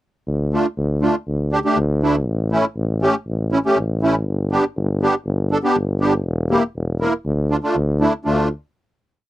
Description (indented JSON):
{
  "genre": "klezmer",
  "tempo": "120 BPM",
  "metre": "4/4",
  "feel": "straight",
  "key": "D harmonic minor",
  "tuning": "A4 = 440 Hz",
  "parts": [
    { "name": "warm tuba", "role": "bass", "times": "0.3-8.5 s", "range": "E1 to D2", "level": "-20 LUFS", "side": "equal", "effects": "none" },
    { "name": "musette accordion", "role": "accompaniment", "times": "0.5-8.5 s", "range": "A3 to Bb4", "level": "-17 LUFS", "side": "right 1 dB", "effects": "none" }
  ],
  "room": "light reverb",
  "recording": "dry, close 1970s-style studio recording",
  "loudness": "-17 LUFS",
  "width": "side -15 dB against mid",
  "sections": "0.3-8.3 A section; 8.3-9.3 final chord",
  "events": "none",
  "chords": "0.3 Dm; 2.3 A; 4.3 G; 6.3 Edim; 7.3 Dm"
}